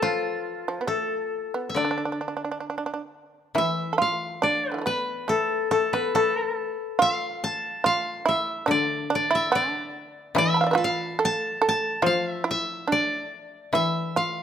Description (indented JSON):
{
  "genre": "japanese traditional, Japanese chamber music",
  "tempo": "71 BPM",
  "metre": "4/4",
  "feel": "rubato",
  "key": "D kumoi",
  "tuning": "A4 = 441 Hz",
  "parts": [
    { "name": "koto", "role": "melody", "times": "0.0-14.4 s", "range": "F4 to B5", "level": "-25 LUFS", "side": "left 3 dB", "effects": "none" },
    { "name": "shamisen", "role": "second line", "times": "0.0-14.4 s", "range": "D3 to B5", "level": "-26 LUFS", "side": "right 4 dB", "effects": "none" },
    { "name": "koto", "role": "accompaniment", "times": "1.7-14.4 s", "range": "D3 to F3", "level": "-28 LUFS", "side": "left 3 dB", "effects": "none" }
  ],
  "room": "moderate recital hall reverb, RT60 1.8 s",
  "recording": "close, detailed microphones",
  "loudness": "-23 LUFS",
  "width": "side -9 dB against mid",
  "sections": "0.0-3.6 A section; 3.6-14.4 B section",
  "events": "none",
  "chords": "none"
}